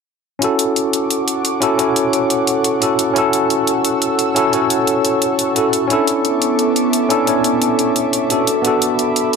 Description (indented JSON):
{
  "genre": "liquid drum and bass",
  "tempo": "175 BPM",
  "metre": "4/4",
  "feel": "straight",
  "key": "D major",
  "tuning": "A4 = 440 Hz",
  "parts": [
    { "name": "tine electric piano", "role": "accompaniment", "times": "0.4-9.4 s", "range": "B3 to C#5", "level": "-16 LUFS", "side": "left 1 dB", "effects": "fast stereo tremolo, low-pass filter, ping-pong delay" },
    { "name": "airy breathy pad", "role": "sustained chords", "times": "0.6-9.4 s", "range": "B3 to E6", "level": "-21 LUFS", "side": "right 2 dB", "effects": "chorus" },
    { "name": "electronic hi-hat", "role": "drums", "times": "0.4-9.4 s", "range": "none", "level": "-20 LUFS", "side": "equal", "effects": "overdrive" }
  ],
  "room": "moderate plate reverb, RT60 2.4 s",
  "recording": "none",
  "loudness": "-14 LUFS",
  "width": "side -5 dB against mid",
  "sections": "0.4-9.4 A section",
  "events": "none",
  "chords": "0.4 Dmaj7; 5.9 Bm11"
}